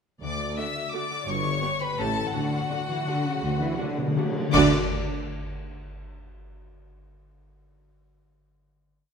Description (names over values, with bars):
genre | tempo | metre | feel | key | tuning
classical, orchestral ballroom waltz | 167 BPM | 3/4 | uneven beats, rubato | D major | A4 = 440 Hz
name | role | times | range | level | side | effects
rich chamber violin section | melody | 0.2-4.7 s | F#5 to E6 | -31 LUFS | left 3 dB | none
rich chamber violin section | second line | 0.2-4.7 s | F#4 to E5 | -32 LUFS | left 4 dB | none
concert harp | arpeggios | 0.2-5.6 s | G2 to F#5 | -34 LUFS | left 7 dB | none
clear chamber double bass section | bass | 0.2-4.7 s | G1 to D2 | -32 LUFS | right 5 dB | none
mellow tuba | bass | 0.2-4.7 s | G1 to D2 | -32 LUFS | right 4 dB | none
rich chamber cello section | bass | 0.2-4.7 s | D2 to E3 | -32 LUFS | right 1 dB | none
rich chamber viola section | accompaniment | 0.6-4.7 s | A3 to G4 | -31 LUFS | right 4 dB | none
cymbal swell, clash cymbals and concert bass drum | percussion | 2.3-5.2 s | none | -33 LUFS | equal | none
timpani | percussion | 2.3-4.7 s | D3 | -31 LUFS | left 2 dB | none
room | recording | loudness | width
wet scoring stage reverb, RT60 1.6 s | minimal, uncompressed stereo recording | -24 LUFS | side -6 dB against mid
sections
0.2-4.5 A section; 4.5-5.6 final chord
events
timpani fill 2.3-4.5; band accent 4.5-4.9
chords
0.2 D; 1.3 G; 2.0 A7; 2.3 D